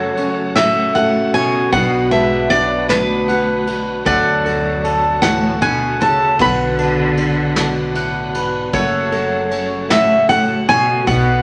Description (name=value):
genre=acoustic folk duo or small band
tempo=51 BPM (dotted quarters)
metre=6/8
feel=straight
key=F# minor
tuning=A4 = 441 Hz
part: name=picked steel-string acoustic guitar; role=melody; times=0.0-11.4 s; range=B4 to B5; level=-19 LUFS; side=equal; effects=none
part: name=rich cello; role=second line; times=0.0-11.4 s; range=D2 to D3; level=-24 LUFS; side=equal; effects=none
part: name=nylon-string guitar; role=accompaniment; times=0.0-11.4 s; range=F#2 to B4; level=-25 LUFS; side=equal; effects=none
part: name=bright tonewheel organ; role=sustained chords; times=0.0-11.4 s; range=B2 to F#4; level=-30 LUFS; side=equal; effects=slow rotary speaker, overdrive
part: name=mandolin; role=arpeggios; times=0.0-11.4 s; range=A3 to F#5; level=-24 LUFS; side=equal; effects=none
part: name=upright bass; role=bass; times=0.0-11.4 s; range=F#1 to F#2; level=-29 LUFS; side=equal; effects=none
part: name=soft brush drum kit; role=drums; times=0.2-11.3 s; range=kick drum, ride cymbal, snare drum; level=-29 LUFS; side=equal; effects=none
room=wet club reverb, RT60 0.5 s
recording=none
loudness=-16 LUFS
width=mono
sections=0.0-11.4 A section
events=none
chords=0.0 F#m; 1.7 Bm; 4.1 D; 6.4 Bm; 8.7 F#m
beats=0.56 | 1.73 2.90 | 4.06 5.23 | 6.40 7.57 | 8.74 9.91 | 11.08